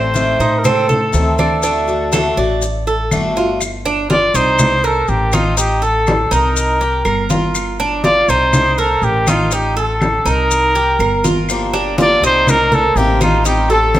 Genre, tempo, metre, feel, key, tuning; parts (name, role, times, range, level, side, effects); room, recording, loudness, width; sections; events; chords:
latin, Cuban son and guajira; 122 BPM; 4/4; straight; G minor; A4 = 440 Hz
breathy trumpet; melody; 0.0-14.0 s; F4 to D5; -16 LUFS; equal; tape echo
picked swing-style acoustic guitar; accompaniment; 0.0-3.6, 11.5-14.0 s; C3 to G4; -20 LUFS; left 2 dB
Cuban tres; arpeggios; 0.0-14.0 s; C4 to D5; -19 LUFS; right 4 dB
upright bass; bass; 0.0-14.0 s; G1 to A2; -20 LUFS; equal
congas; percussion; 0.2-14.0 s; -20 LUFS; left 1 dB
maracas; percussion; 0.2-14.0 s; -25 LUFS; left 6 dB
claves; percussion; 0.7-14.0 s; -29 LUFS; left 1 dB
moderate large studio reverb, RT60 1.3 s; -12 LUFS; side -13 dB against mid
0.0-3.6 A section; 3.6-14.0 B section
0.0 Adim; 1.6 D; 3.6 G5; 4.6 Cm7; 5.6 Adim; 6.6 Cm7; 7.5 G5; 8.5 Cm7; 9.5 Adim; 10.5 Cm7; 11.5 Gm7; 12.5 Cm7; 13.5 Am7b5